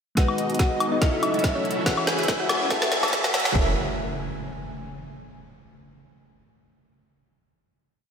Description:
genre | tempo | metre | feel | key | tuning
future bass | 142 BPM | 4/4 | swing 54% on 16ths, half-time | E major | A4 = 441 Hz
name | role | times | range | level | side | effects
thumb-piano-like synth pluck | melody | 0.2-3.7 s | C#4 to A5 | -29 LUFS | left 1 dB | chorus, sidechain pumping, ping-pong delay
glassy digital keys | accompaniment | 0.2-3.7 s | E3 to G#5 | -32 LUFS | left 2 dB | chorus, sidechain pumping, ping-pong delay
ethereal airy pad | sustained chords | 0.5-3.7 s | F#4 | -36 LUFS | right 3 dB | ensemble chorus, built-in reverb, sidechain pumping
airy dreamy lead | arpeggios | 0.2-3.7 s | D#5 to E5 | -34 LUFS | equal | none
dense compressed supersaw | riff | 0.2-3.7 s | B3 to E5 | -30 LUFS | equal | sidechain pumping, low-pass filter
warm 808-style bass | bass | 0.2-3.7 s | E1 to A1 | -33 LUFS | equal | none
electronic kick drum | drums | 0.2-3.6 s | none | -23 LUFS | equal | none
trap drum kit | drums | 0.2-3.5 s | hi-hat, snare drum, woodblock | -25 LUFS | left 1 dB | none
riser and impact | sound effects | 2.0-5.2 s | none | -35 LUFS | right 2 dB | none
room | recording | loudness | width
wet lush hall reverb, RT60 1.9 s | dreamy mix soaked in reverb, high-pass filter | -21 LUFS | side -7 dB against mid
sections
0.2-3.6 build; 3.6-5.2 final chord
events
build-up 0.2-3.6; drum fill 0.2-3.6; filter sweep on supersaw synth 0.2-3.6; filter sweep 0.2-3.6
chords
0.2 G#m7; 1.0 F#m7; 1.9 E6; 2.7 Amaj7; 3.6 E6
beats
| 0.17 0.59 1.02 1.44 | 1.86 2.28 2.71 3.13 | 3.55 3.97 4.40 4.82

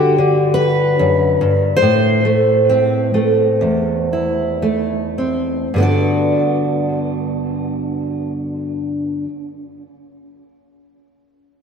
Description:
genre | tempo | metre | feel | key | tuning
folk, solo fingerstyle acoustic guitar | 52-76 BPM | 4/4 | rubato | G major | A4 = 440 Hz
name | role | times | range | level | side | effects
fingerpicked steel-string acoustic guitar | solo | 0.0-9.3 s | E2 to D5 | -14 LUFS | equal | lush chorus, tape echo
room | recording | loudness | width
wet lush hall reverb, RT60 1.9 s, small room ambience | dreamy mix soaked in reverb | -14 LUFS | side -6 dB against mid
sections
0.0-5.7 A section; 5.7-10.2 B section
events
slowing down 0.0-5.7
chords
0.0 Gmaj7; 1.8 Am; 5.7 Gmaj7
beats
0.18 0.98 | 1.81 2.69 3.62 4.63 | 5.74 6.88 7.99 9.10

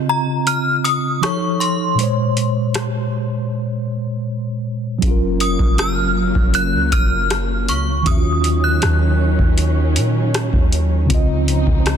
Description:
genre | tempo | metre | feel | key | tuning
contemporary R&B | 79 BPM | 4/4 | straight | Eb dorian | A4 = 440 Hz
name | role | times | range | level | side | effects
mellow tine electric piano | accompaniment | 0.0-12.0 s | Bb2 to Fb5 | -21 LUFS | equal | medium stereo tremolo
synth chime | melody | 0.1-10.7 s | Bb5 to Gb6 | -21 LUFS | equal | ensemble chorus, phaser, digital delay
booming analog drum machine | drums | 0.5-12.0 s | hi-hat, kick drum, rim click | -20 LUFS | equal | soft clipping on snare
dark studio string section | sustained chords | 5.0-12.0 s | Db3 to Eb4 | -24 LUFS | right 2 dB | stereo widening
clean 808-style bass | bass | 5.0-12.0 s | Gb1 to Bb2 | -19 LUFS | equal | none
room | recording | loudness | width
digital ambience | dense, heavily limited modern master | -15 LUFS | side -8 dB against mid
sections
0.0-12.0 A section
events
break 0.0-5.0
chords
0.0 Dbmaj9; 1.2 F7b13; 2.0 Bbm9; 5.0 Gbmaj7; 8.1 Ebm9; 11.1 Dbmaj9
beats
0.47 1.23 | 1.99 2.75 3.51 4.27 | 5.03 5.79 6.54 7.30 | 8.06 8.82 9.58 10.34 | 11.10 11.86

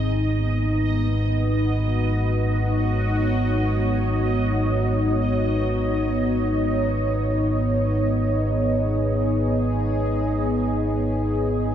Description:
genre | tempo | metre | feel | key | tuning
dark ambient drone | free time | none | none | unclear | A4 = 440 Hz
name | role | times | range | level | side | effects
sweeping resonant pad | sustained chords | 0.0-11.7 s | B3 to Eb5 | -23 LUFS | equal | chorus, shimmer reverb
deep rumbling drone | drone | 0.0-11.7 s | Ab1 to Ab2 | -23 LUFS | equal | built-in reverb, wide subtle chorus
bubbling stepped-filter texture | texture | 0.0-11.7 s | Eb5 | -31 LUFS | right 3 dB | chorus, built-in reverb, shimmer reverb
room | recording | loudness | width
wet huge ambient reverb, RT60 8.4 s | none | -20 LUFS | side -9 dB against mid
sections
0.0-11.7 A section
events
fade-in on synth texture 0.0-11.7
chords
0.1 Badd9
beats
free time

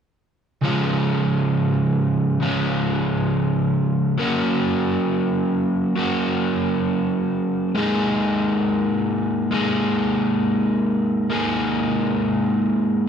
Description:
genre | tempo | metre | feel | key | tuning
rock | 68 BPM | 4/4 | straight | unclear | A4 = 440 Hz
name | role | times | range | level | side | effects
crunchy overdriven guitar | solo | 0.6-13.1 s | C#3 to G#4 | -19 LUFS | equal | none
room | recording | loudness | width
wet large studio reverb, RT60 1.3 s | band playing live in one room | -19 LUFS | side -7 dB against mid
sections
0.6-13.1 A section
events
none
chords
0.6 C#; 4.2 F#; 7.7 G#sus2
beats
| 0.64 1.53 2.42 3.30 | 4.19 5.08 5.97 6.86 | 7.75 8.64 9.52 10.41 | 11.30 12.19 13.07

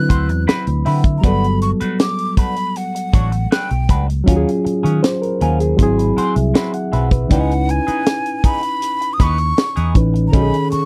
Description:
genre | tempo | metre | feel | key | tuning
lush 1970s-style soul | 79 BPM | 4/4 | straight | unclear | A4 = 440 Hz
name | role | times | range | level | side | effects
breathy jazz flute | melody | 0.0-10.9 s | F#5 to F#6 | -24 LUFS | equal | none
barky reed electric piano | accompaniment | 0.0-10.9 s | D#3 to B5 | -22 LUFS | equal | overdrive
vintage muted fingered electric bass | bass | 0.0-10.8 s | G1 to D#3 | -20 LUFS | equal | none
semi-hollow electric guitar | riff | 0.1-10.8 s | E3 to C#5 | -27 LUFS | equal | wah
tight funk drum kit | drums | 0.1-10.9 s | hi-hat, kick drum, snare drum | -17 LUFS | equal | none
vibraphone with soft mallets | texture | 5.8-7.3 s | E5 to B#5 | -34 LUFS | equal | none
room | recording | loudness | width
little or no reverb | dry, close 1970s-style studio recording | -17 LUFS | mono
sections
0.0-10.9 A section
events
reed electric piano fill 0.1-1.2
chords
0.0 D13; 1.2 Gmaj9; 4.3 D#m11; 5.8 G#7alt; 7.3 C#m9; 10.3 B13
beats
0.48 | 1.24 2.00 2.76 3.52 | 4.27 5.03 5.79 6.55 | 7.31 8.06 8.82 9.58 | 10.34

